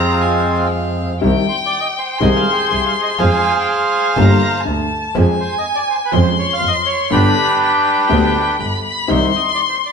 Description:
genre	tango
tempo	122 BPM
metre	4/4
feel	rubato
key	C harmonic minor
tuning	A4 = 440 Hz
part	bandoneon	melody	0.0-9.9 s	Ab3 to Ab5	-18 LUFS	right 2 dB	none
part	rich violin	second line	0.0-9.9 s	F5 to C6	-19 LUFS	left 2 dB	none
part	warm concert grand piano	accompaniment	0.0-9.3 s	G1 to Ab4	-20 LUFS	left 2 dB	none
part	bandoneon	stabs	0.0-1.1, 9.1-9.3 s	G3 to F4	-24 LUFS	equal	none
part	rich double bass	bass	0.0-9.3 s	G1 to F2	-18 LUFS	right 1 dB	none
room	wet stone room reverb, RT60 1.2 s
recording	band playing live in one room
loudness	-13 LUFS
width	side -6 dB against mid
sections	0.0-1.2 A section; 1.2-9.9 B section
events	none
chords	0.0 Fm; 1.2 Cm; 2.2 Ab/C; 3.2 Fm; 4.2 Gm; 5.1 Fm; 6.1 Db/F; 7.1 G; 9.1 Cm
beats	0.22 0.72 | 1.22 1.71 2.21 2.70 | 3.19 3.68 4.17 4.66 | 5.15 5.64 6.13 6.62 | 7.11 7.60 8.10 8.60 | 9.09 9.59

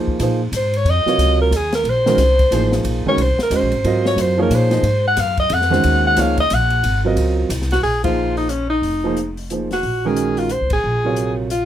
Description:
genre	modal jazz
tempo	180 BPM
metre	3/4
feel	swing 62% on 8ths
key	Bb minor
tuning	A4 = 439 Hz
part	warm concert grand piano	accompaniment	0.0-11.5 s	C3 to Eb5	-20 LUFS	right 4 dB	none
part	upright bass	bass	0.0-11.7 s	F1 to Bb2	-20 LUFS	equal	none
part	open jazz drum kit	drums	0.1-11.6 s	hi-hat, kick drum, ride cymbal, snare drum	-27 LUFS	left 2 dB	none
part	clear alto saxophone	melody	0.6-11.7 s	Db4 to Gb5	-18 LUFS	left 1 dB	none
room	light reverb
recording	close, detailed microphones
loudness	-15 LUFS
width	side -11 dB against mid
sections	0.0-7.8 A section; 7.8-11.7 B section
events	alto saxophone solo 0.0-7.8; band accent 8.0, 10.7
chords	0.0 Bb9sus4; 3.8 Ab9sus4; 7.8 Bb9sus4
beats	0.20 0.53 | 0.86 1.19 1.52 | 1.85 2.18 2.52 | 2.85 3.18 3.51 | 3.84 4.17 4.51 | 4.84 5.17 5.50 | 5.84 6.17 6.50 | 6.83 7.17 7.50 | 7.83 8.17 8.50 | 8.83 9.17 9.50 | 9.84 10.17 10.50 | 10.84 11.17 11.50

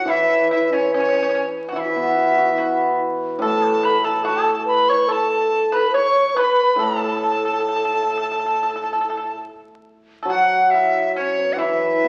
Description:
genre	chinese traditional, Chinese chamber ensemble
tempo	70 BPM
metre	4/4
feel	rubato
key	A gong mode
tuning	A4 = 439 Hz
part	dizi	melody	0.0-12.1 s	C#5 to C#6	-23 LUFS	equal	none
part	low xiao	second line	0.0-12.1 s	C#4 to C#5	-26 LUFS	equal	none
part	pipa	second line	0.0-12.1 s	C#4 to C#5	-28 LUFS	equal	none
part	hammered dulcimer	accompaniment	0.0-12.1 s	A2 to B4	-24 LUFS	equal	none
room	wet recital hall reverb, RT60 1.4 s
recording	very old 78 rpm record, vinyl crackle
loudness	-19 LUFS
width	mono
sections	0.0-10.3 A section; 10.3-12.1 B section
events	none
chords	none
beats	| 0.07 0.90 1.74 2.56 | 3.40 4.23 5.07 5.92 | 6.77 7.63 8.51 9.40 | 10.28 11.15 12.02

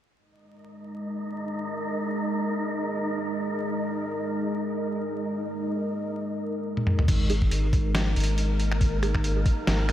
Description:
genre	deep dubstep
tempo	139 BPM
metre	4/4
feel	swing 56% on 16ths, half-time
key	unclear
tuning	A4 = 437 Hz
part	deep dark ambient pad	sustained chords	0.7-9.9 s	G#3 to A#4	-30 LUFS	equal	chorus, built-in reverb
part	wind-like tuned noise texture	texture	0.8-9.9 s	A#3 to D#5	-35 LUFS	right 1 dB	built-in reverb
part	trip hop sampler-style drum kit	drums	6.8-9.9 s	crash cymbal, finger snaps, hi-hat, snare drum, toms	-28 LUFS	equal	none
part	soft dub sub bass	bass	7.1-9.9 s	G#1	-25 LUFS	equal	none
part	electronic kick drum	drums	7.1-9.6 s	none	-23 LUFS	equal	none
part	filtered dub chord stab	stabs	7.3-9.2 s	G#3 to G#4	-37 LUFS	right 4 dB	phaser, analog chorus, cassette tape, dub echo
room	moderate huge ambient reverb, RT60 6.5 s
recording	dreamy mix soaked in reverb, vinyl crackle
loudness	-24 LUFS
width	side -12 dB against mid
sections	0.2-7.1 A section; 7.1-9.9 B section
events	drum fill 6.8-7.1; filter sweep on synth stab 7.1-9.9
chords	0.2 G#5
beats	| 0.18 0.61 1.04 1.47 | 1.90 2.34 2.77 3.20 | 3.63 4.06 4.49 4.93 | 5.36 5.79 6.22 6.65 | 7.08 7.52 7.95 8.38 | 8.81 9.24 9.67

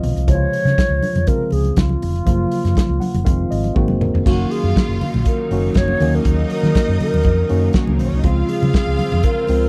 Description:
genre	disco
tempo	120 BPM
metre	4/4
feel	straight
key	unclear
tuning	A4 = 437 Hz
part	mellow tine electric piano	accompaniment	0.0-9.7 s	C3 to Gb5	-24 LUFS	equal	overdrive
part	hollow-body short-scale fingered electric bass	bass	0.0-9.7 s	Fb1 to Eb3	-21 LUFS	equal	none
part	warm soul drum kit	drums	0.0-9.6 s	crash cymbal, hi-hat, kick drum, snare drum, toms	-20 LUFS	equal	none
part	congas	percussion	0.0-9.6 s	none	-29 LUFS	equal	none
part	alto flute	melody	0.3-9.7 s	F4 to Db5	-25 LUFS	equal	none
part	clear studio string section	second line	4.3-9.7 s	Gb3 to F5	-31 LUFS	equal	none
part	clear studio string section	sustained chords	4.3-9.7 s	Db3 to F4	-33 LUFS	equal	none
room	little or no reverb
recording	none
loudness	-17 LUFS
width	mono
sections	0.0-4.3 A section; 4.3-9.7 B section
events	tine electric piano fill 0.0, 2.8-4.3; drum fill 3.8-4.3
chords	0.3 Dbmaj7; 2.3 Gbmaj7; 3.3 Fm7; 3.8 Ab9; 4.3 Gb6; 6.0 Ebm7; 8.2 Dbmaj7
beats	| 0.28 0.78 1.28 1.77 | 2.27 2.77 3.27 3.76 | 4.26 4.76 5.26 5.76 | 6.25 6.75 7.25 7.75 | 8.24 8.74 9.24

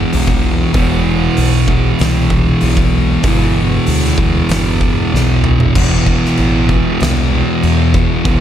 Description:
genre	stoner and doom metal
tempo	96 BPM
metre	4/4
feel	straight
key	unclear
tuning	A4 = 440 Hz
part	thick fuzz guitar	riff	0.0-8.4 s	E2 to E3	-17 LUFS	left 9 dB	distortion
part	thick fuzz guitar	riff	0.0-8.4 s	E2 to E3	-16 LUFS	right 7 dB	distortion
part	growling fingered electric bass	bass	0.0-8.4 s	E1 to E2	-16 LUFS	equal	overdrive
part	oversized low-tuned drum kit	drums	0.1-8.4 s	crash cymbal, hi-hat, kick drum, snare drum, toms	-17 LUFS	equal	none
room	light reverb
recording	none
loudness	-11 LUFS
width	side -10 dB against mid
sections	0.0-5.8 A section; 5.8-8.4 B section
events	drum fill 5.1-5.8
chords	0.0 Em; 5.8 E5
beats	0.12 | 0.75 1.38 2.00 2.63 | 3.25 3.88 4.50 5.13 | 5.75 6.38 7.00 7.63 | 8.25

